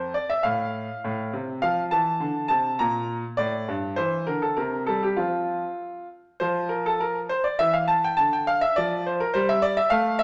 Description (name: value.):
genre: classical-period piano sonatina.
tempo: 102 BPM.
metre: 2/4.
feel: straight.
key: F major.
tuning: A4 = 440 Hz.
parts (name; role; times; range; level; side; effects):
clear concert grand piano; solo; 0.0-10.2 s; F2 to Bb5; -25 LUFS; equal; none.
room: wet large studio reverb, RT60 1.2 s.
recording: none.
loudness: -25 LUFS.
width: mono.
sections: 0.0-6.4 A section; 6.4-10.2 A section.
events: none.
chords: 0.5 F/A; 1.6 F; 2.8 Gm/Bb; 4.0 C/E; 4.6 C5; 5.2 F5; 6.4 N.C.; 7.6 Dmadd9; 8.8 Dm11/F.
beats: | 0.45 1.04 | 1.62 2.21 | 2.79 3.38 | 3.97 4.57 | 5.18 5.79 | 6.40 7.00 | 7.59 8.18 | 8.76 9.34 | 9.92.